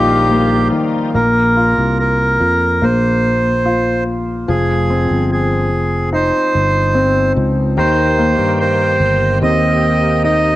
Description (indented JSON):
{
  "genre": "pop",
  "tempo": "73 BPM",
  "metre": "4/4",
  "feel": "straight",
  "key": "unclear",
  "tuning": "A4 = 440 Hz",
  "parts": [
    { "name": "accordion", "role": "melody", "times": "0.0-10.6 s", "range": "G4 to Eb5", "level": "-16 LUFS", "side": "right 2 dB", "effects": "cassette tape" },
    { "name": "warm studio violin section", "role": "second line", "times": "0.0-1.1 s", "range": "F4 to F5", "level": "-28 LUFS", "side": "right 1 dB", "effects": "cassette tape" },
    { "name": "clear concert grand piano", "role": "accompaniment", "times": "0.0-10.6 s", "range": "Eb3 to F4", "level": "-18 LUFS", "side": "left 3 dB", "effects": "cassette tape" },
    { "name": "bright tonewheel organ", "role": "sustained chords", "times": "0.0-1.1, 7.8-10.6 s", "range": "Eb3 to G4", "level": "-23 LUFS", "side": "equal", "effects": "overdrive, chorus vibrato, slow rotary speaker, cassette tape" },
    { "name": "sustaining fretless electric bass", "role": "bass", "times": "0.0-10.6 s", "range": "F1 to G2", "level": "-17 LUFS", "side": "equal", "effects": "wide subtle chorus" }
  ],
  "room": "moderate spring reverb, RT60 2.0 s, small room reverb",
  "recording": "home recording on cassette, nothing above 10.6 kHz",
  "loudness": "-12 LUFS",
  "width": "side -16 dB against mid",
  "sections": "0.0-1.1 A section; 1.1-10.6 B section",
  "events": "none",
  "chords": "0.0 Ebadd9; 1.1 Bbsus2; 4.5 Fm7; 7.8 Cm7"
}